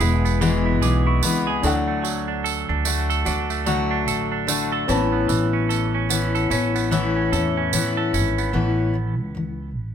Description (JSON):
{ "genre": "acoustic pop", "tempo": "74 BPM", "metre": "4/4", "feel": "swing 60% on 16ths", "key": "A major", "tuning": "A4 = 440 Hz", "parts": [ { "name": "dark upright piano", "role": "accompaniment", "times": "0.0-8.6 s", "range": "C4 to D6", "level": "-30 LUFS", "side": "left 2 dB", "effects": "none" }, { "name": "fingerpicked steel-string acoustic guitar", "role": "accompaniment", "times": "0.0-9.7 s", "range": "E2 to G#4", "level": "-23 LUFS", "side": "left 5 dB", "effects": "none" }, { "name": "semi-hollow electric guitar", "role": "arpeggios", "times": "0.0-9.1 s", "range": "E3 to A4", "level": "-26 LUFS", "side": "right 9 dB", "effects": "digital delay" }, { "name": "upright bass", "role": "bass", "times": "0.0-9.9 s", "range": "E1 to A2", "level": "-24 LUFS", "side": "right 1 dB", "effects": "none" }, { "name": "tambourine", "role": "percussion", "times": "0.0-8.5 s", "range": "none", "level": "-28 LUFS", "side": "right 10 dB", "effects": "none" } ], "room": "light reverb", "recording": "none", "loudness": "-19 LUFS", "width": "side -8 dB against mid", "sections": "0.0-8.5 A section; 8.5-9.9 B section", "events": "none", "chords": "0.0 E; 1.6 D; 4.9 Aadd9" }